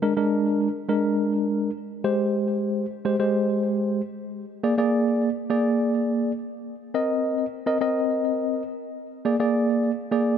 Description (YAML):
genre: pop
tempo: 104 BPM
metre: 4/4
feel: straight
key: unclear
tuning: A4 = 440 Hz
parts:
  - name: tine electric piano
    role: solo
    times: 0.0-10.4 s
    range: Ab3 to Eb5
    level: -22 LUFS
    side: equal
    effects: medium stereo tremolo, digital delay
room: light reverb, digital ambience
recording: none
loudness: -22 LUFS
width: side -8 dB against mid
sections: 0.0-10.4 A section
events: none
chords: 0.0 Bb7; 2.0 Abmaj7; 4.6 Bb7; 6.9 Cm7; 9.3 Bb7